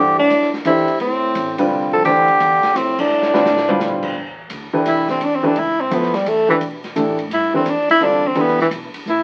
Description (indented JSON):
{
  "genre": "modal jazz",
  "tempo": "171 BPM",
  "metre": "3/4",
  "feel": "swing 66% on 8ths",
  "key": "C major from 4.2 s",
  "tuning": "A4 = 439 Hz",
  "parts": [
    { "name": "breathy tenor saxophone", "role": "melody", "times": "0.0-9.2 s", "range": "E3 to A4", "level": "-18 LUFS", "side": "equal", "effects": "none" },
    { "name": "clear trombone", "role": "second line", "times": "0.0-4.0 s", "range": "A2 to F3", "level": "-27 LUFS", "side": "equal", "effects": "none" },
    { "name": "warm concert grand piano", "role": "accompaniment", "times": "0.0-8.6 s", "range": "D3 to C5", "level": "-22 LUFS", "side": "equal", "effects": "none" },
    { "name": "upright bass", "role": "bass", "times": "0.0-9.2 s", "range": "A1 to B2", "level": "-37 LUFS", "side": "equal", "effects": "none" },
    { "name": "open jazz drum kit", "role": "drums", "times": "0.2-9.2 s", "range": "crash cymbal, hi-hat, kick drum, ride cymbal, snare drum, toms", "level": "-32 LUFS", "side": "equal", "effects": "none" }
  ],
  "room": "wet studio reverb, RT60 0.6 s",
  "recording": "very old 78 rpm record, vinyl crackle",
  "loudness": "-17 LUFS",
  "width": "mono",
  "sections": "0.0-4.2 A section; 4.2-9.2 B section",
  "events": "band accent 2.9; drum fill 3.1-3.8; tenor saxophone solo 4.2-9.2",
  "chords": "0.0 G9sus4; 4.2 Cmaj9"
}